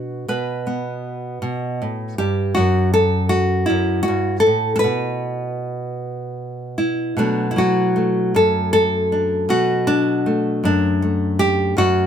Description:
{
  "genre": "folk, solo fingerstyle acoustic guitar",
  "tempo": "52 BPM (dotted quarters)",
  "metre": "6/8",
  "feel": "straight",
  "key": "B minor",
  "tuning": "A4 = 440 Hz",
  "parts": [
    { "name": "nylon-string guitar", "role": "solo", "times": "0.0-12.1 s", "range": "F#2 to B4", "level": "-17 LUFS", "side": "equal", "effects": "none" }
  ],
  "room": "light reverb",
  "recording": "band playing live in one room",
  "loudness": "-17 LUFS",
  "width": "side -8 dB against mid",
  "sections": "0.0-7.2 A section; 7.2-12.1 A section",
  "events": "none",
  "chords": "0.0 B7(no3); 2.6 F#m7; 4.8 N.C.; 7.2 Bm7"
}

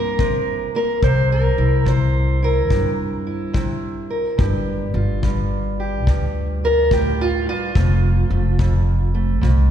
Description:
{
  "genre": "acoustic country blues, solo or duo",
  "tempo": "71 BPM",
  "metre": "4/4",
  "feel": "swing 66% on 8ths",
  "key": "C mixolydian",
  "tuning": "A4 = 441 Hz",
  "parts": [
    { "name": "fingerpicked steel-string acoustic guitar", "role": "melody", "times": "0.0-9.7 s", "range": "F2 to C5", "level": "-21 LUFS", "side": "right 1 dB", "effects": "none" },
    { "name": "upright bass", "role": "bass", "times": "0.0-9.7 s", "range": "F1 to G2", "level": "-19 LUFS", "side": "equal", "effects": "none" },
    { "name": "kick drum", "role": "drums", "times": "0.2-9.7 s", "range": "none", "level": "-24 LUFS", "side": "left 2 dB", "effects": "none" }
  ],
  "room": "wet concert hall reverb, RT60 2.5 s",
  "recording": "heard from further back in the room",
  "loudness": "-17 LUFS",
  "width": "side -9 dB against mid",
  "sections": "0.0-9.7 A section",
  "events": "steel-string acoustic guitar solo 0.0-9.7",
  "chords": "0.0 C7; 4.4 G5; 7.8 F"
}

